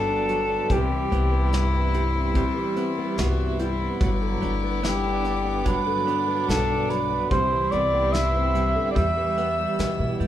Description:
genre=acoustic folk-pop ballad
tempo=73 BPM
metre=4/4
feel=straight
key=unclear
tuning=A4 = 440 Hz
part: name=dark cor anglais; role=melody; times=0.0-10.2 s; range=G4 to E5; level=-24 LUFS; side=right 1 dB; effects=none
part: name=warm viola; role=second line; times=0.0-10.2 s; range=G3 to F#4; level=-32 LUFS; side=left 4 dB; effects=none
part: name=nylon-string guitar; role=accompaniment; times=0.0-10.3 s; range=E2 to G4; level=-30 LUFS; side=left 5 dB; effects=none
part: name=warm studio string section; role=sustained chords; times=0.0-10.3 s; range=G4 to E6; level=-38 LUFS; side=left 1 dB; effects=none
part: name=direct-recorded clean electric guitar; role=arpeggios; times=0.0-10.3 s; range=F#3 to E4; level=-30 LUFS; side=right 4 dB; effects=tremolo
part: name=upright bass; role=bass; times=0.0-10.3 s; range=G1 to D3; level=-26 LUFS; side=equal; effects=none
part: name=soft brush drum kit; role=drums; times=0.3-10.3 s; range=hi-hat, kick drum, snare drum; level=-28 LUFS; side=equal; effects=none
room=moderate large studio reverb, RT60 0.8 s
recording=band playing live in one room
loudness=-21 LUFS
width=side -11 dB against mid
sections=0.0-10.3 A section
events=none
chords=0.0 Gmaj7; 0.7 Cmaj7; 4.0 Gmaj7; 7.3 Cmaj7; 9.0 Em

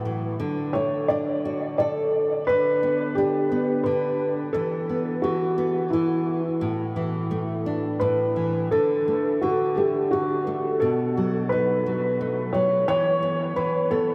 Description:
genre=children's music, lullaby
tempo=87 BPM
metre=3/4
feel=straight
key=D major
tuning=A4 = 442 Hz
part: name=nylon-string guitar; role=accompaniment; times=0.0-14.1 s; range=A2 to A4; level=-29 LUFS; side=equal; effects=subtle chorus
part: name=felt-muted upright piano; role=melody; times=0.7-14.1 s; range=E4 to D5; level=-26 LUFS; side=equal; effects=lush chorus, diffuse ambient delay
room=wet huge ambient reverb, RT60 8.2 s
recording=dreamy mix soaked in reverb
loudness=-24 LUFS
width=mono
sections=0.0-8.7 A section; 8.7-14.1 A section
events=none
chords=0.4 D; 2.5 G/D; 4.5 E5; 6.6 Asus4; 8.0 A5; 8.7 D; 10.8 B7; 12.9 E5

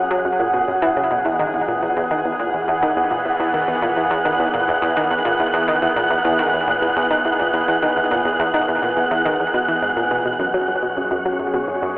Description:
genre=ambient, sequencer-driven space music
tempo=105 BPM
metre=4/4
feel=straight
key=E major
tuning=A4 = 440 Hz
part: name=sweeping resonant pad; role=sustained chords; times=0.0-12.0 s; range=E3 to G#4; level=-23 LUFS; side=equal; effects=chorus
part: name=analog pluck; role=riff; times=0.0-11.9 s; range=E2 to F#3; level=-21 LUFS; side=equal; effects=chorus, cassette tape, tape echo
part: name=analog drone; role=bass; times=3.2-12.0 s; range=E2 to F#2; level=-48 LUFS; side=left 1 dB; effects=none
part: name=wind-like tuned noise texture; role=texture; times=0.0-12.0 s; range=C#5 to F#5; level=-20 LUFS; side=right 1 dB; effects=built-in reverb
room=wet huge ambient reverb, RT60 8.1 s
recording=worn, warbling old tape, cassette tape, warbly pitch drift, telephone sound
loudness=-16 LUFS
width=side -21 dB against mid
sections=0.0-12.0 A section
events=fade-in on analog synth pad 0.0-12.0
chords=0.0 F#sus2; 1.3 E; 10.4 F#sus2

